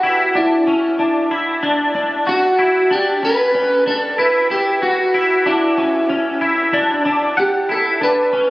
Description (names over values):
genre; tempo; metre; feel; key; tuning
dream pop; 94 BPM; 4/4; straight; D major; A4 = 442 Hz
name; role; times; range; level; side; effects
electric guitar at the edge of break-up; melody; 0.0-8.5 s; E4 to B4; -16 LUFS; equal; lush chorus, shimmer reverb, tape echo
twangy electric guitar; arpeggios; 0.0-8.5 s; C#4 to F#5; -17 LUFS; equal; analog chorus, shimmer reverb, tape echo
room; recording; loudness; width
wet lush hall reverb, RT60 2.0 s; recorded on a phone in the room, studio reverb, compression; -14 LUFS; side -19 dB against mid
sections
0.0-8.5 A section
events
none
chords
0.0 Dmaj9/C#